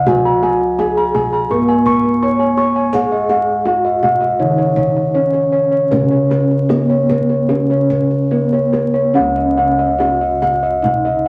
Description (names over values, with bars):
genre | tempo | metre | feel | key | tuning
Javanese gamelan | 71-84 BPM | 4/4 | straight | Db slendro | A4 = 439 Hz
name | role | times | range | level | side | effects
gamelan-type bronze metallophone | melody | 0.0-11.3 s | Cb4-45c to Db5 | -22 LUFS | equal | none
gamelan-type bronze metallophone | accompaniment | 0.0-9.2 s | Db3 to Cb4-45c | -22 LUFS | equal | none
gamelan-type bossed gongs | arpeggios | 0.0-11.3 s | Cb5-45c to Db6 | -18 LUFS | equal | none
gamelan-type bossed gongs | bass | 0.0-11.3 s | Db2 to Ab4+25c | -25 LUFS | equal | none
kendang | percussion | 0.1-11.2 s | none | -27 LUFS | equal | none
room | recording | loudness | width
wet club reverb, RT60 0.8 s | vinyl crackle | -15 LUFS | mono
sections
0.0-9.2 A section; 9.2-11.3 B section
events
none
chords
none